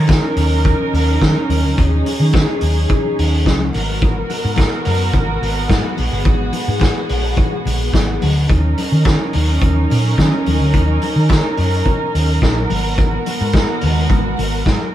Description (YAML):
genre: disco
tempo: 107 BPM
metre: 4/4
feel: straight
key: Eb minor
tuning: A4 = 437 Hz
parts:
  - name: warm studio string section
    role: sustained chords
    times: 0.0-14.9 s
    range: Gb3 to Bb4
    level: -20 LUFS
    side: right 1 dB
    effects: none
  - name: hollow-body short-scale fingered electric bass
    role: bass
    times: 0.0-14.8 s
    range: G1 to Eb3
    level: -17 LUFS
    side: equal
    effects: none
  - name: vintage drum kit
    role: drums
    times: 0.1-14.8 s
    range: hi-hat, kick drum, snare drum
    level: -18 LUFS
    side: equal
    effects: none
  - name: congas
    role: percussion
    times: 0.1-14.9 s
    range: none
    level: -27 LUFS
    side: left 5 dB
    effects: none
room: moderate studio ambience, RT60 0.5 s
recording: band playing live in one room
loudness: -13 LUFS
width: side -12 dB against mid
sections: 0.0-14.9 A section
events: none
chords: 0.0 Ebm7; 3.7 Abm9; 8.5 Ebm7; 12.7 Abm9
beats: 0.09 0.65 1.21 | 1.77 2.33 2.89 3.46 | 4.01 4.58 5.14 5.70 | 6.26 6.82 7.38 7.94 | 8.50 9.06 9.62 10.18 | 10.74 11.30 11.86 12.42 | 12.98 13.54 14.10 14.66